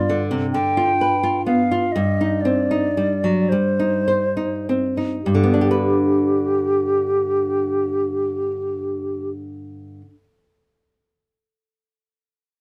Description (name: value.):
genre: romantic duo for flute and classical guitar.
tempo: 32-45 BPM (dotted quarters).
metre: 6/8.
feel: rubato.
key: G major.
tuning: A4 = 441 Hz.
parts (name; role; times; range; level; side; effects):
hollow concert flute; melody; 0.0-9.3 s; G4 to G5; -23 LUFS; equal; none.
nylon-string guitar; accompaniment; 0.0-10.2 s; G2 to C5; -23 LUFS; equal; none.
room: light reverb.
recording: none.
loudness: -20 LUFS.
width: mono.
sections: 0.0-5.2 A section; 5.2-8.5 B section.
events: slowing down 0.0-5.2.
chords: 0.0 G7; 1.9 Cm/G; 5.2 G.